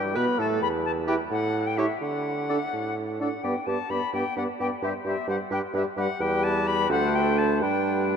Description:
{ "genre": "quick classical-period movement for wind quintet", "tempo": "86 BPM (dotted quarters)", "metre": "6/8", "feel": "straight", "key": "G major", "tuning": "A4 = 436 Hz", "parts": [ { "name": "silver concert flute", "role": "melody", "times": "0.0-8.2 s", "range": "E5 to B5", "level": "-29 LUFS", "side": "left 6 dB", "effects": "none" }, { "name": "mellow oboe", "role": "second line", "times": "0.0-8.2 s", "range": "G4 to D5", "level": "-34 LUFS", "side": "left 3 dB", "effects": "none" }, { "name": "clear French horn", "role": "accompaniment", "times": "0.0-8.2 s", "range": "G3 to E4", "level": "-30 LUFS", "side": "left 1 dB", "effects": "none" }, { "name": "clear clarinet", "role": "accompaniment", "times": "0.0-8.2 s", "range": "D4 to B4", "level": "-33 LUFS", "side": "right 6 dB", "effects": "none" }, { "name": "dark bassoon", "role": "bass", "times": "0.0-8.2 s", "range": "D2 to D3", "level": "-29 LUFS", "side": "right 4 dB", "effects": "none" } ], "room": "wet cathedral reverb, RT60 6.9 s", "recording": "in a vast, echoing space", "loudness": "-24 LUFS", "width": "side -7 dB against mid", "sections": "0.0-8.2 A section", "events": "none", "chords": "0.0 G; 0.6 N.C.; 1.3 A5; 2.0 D; 3.4 G; 4.8 C5/G; 6.2 Em; 6.9 D5; 7.6 G" }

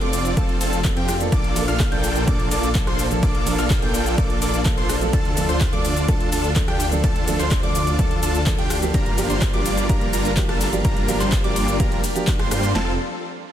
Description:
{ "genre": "EDM, festival progressive house", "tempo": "126 BPM", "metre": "4/4", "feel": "straight", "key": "unclear", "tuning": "A4 = 440 Hz", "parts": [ { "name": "dark concert grand piano", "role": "accompaniment", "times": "0.0-12.9 s", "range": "F3 to A4", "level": "-28 LUFS", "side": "right 2 dB", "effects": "sidechain pumping, ping-pong delay" }, { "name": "lush unison pad", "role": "sustained chords", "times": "0.0-13.0 s", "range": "G3 to Bb4", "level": "-32 LUFS", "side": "left 1 dB", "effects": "none" }, { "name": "plucky unison lead", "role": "arpeggios", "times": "0.0-12.9 s", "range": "G5 to G6", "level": "-30 LUFS", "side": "equal", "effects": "cassette tape, sidechain pumping, ping-pong delay" }, { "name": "supersaw chords", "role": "riff", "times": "0.0-12.9 s", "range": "G3 to G5", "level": "-25 LUFS", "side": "right 1 dB", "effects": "cassette tape, sidechain pumping, ping-pong delay" }, { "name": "detuned saw bass", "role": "bass", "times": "0.0-13.0 s", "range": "F1 to G2", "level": "-26 LUFS", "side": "equal", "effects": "sidechain pumping" }, { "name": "pop drum kit", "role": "drums", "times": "0.0-12.7 s", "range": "handclaps, hi-hat, ride cymbal, rim click, shaker", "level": "-28 LUFS", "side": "left 1 dB", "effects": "overdrive" }, { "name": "big-room dance drum kit", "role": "drums", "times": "0.4-12.9 s", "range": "kick drum, snare drum", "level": "-22 LUFS", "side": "equal", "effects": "overdrive" } ], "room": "light reverb", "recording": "dense, heavily limited modern master", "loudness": "-18 LUFS", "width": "side -10 dB against mid", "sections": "0.0-12.8 A section", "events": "drop 0.0-12.8", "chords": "0.0 F; 1.3 Bbmaj7; 5.1 Dm; 8.9 Gm7; 12.8 F" }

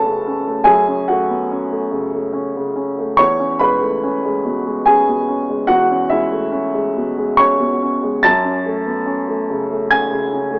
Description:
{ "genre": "neoclassical minimalist piano", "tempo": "72 BPM", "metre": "3/4", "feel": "rubato", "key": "F# minor", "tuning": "A4 = 440 Hz", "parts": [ { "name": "dark upright piano", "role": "solo", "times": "0.0-10.6 s", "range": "E2 to A6", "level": "-14 LUFS", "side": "equal", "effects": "none" } ], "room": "light reverb, small room ambience", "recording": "rough home demo mix, small speaker sound", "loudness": "-14 LUFS", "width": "side -27 dB against mid", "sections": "0.0-10.6 A section", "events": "none", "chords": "0.0 F#m; 3.2 C#m7/E; 8.2 F#m" }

